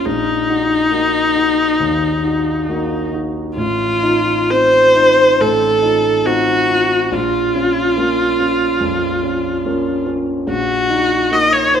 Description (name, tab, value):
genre	classical, romantic duo for viola and grand piano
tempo	62-73 BPM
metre	4/4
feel	rubato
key	Bb minor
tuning	A4 = 440 Hz
part	clear viola	melody	0.0-11.8 s	Eb4 to Eb5	-14 LUFS	equal	none
part	dark grand piano	accompaniment	0.0-11.8 s	A1 to Gb4	-19 LUFS	left 1 dB	none
room	moderate recital hall reverb, RT60 1.7 s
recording	minimal, uncompressed stereo recording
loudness	-13 LUFS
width	side -8 dB against mid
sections	0.0-11.8 A section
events	none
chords	0.1 Ebm/Bb; 3.6 F7/A; 7.1 Bbm; 10.5 Ebm/Bb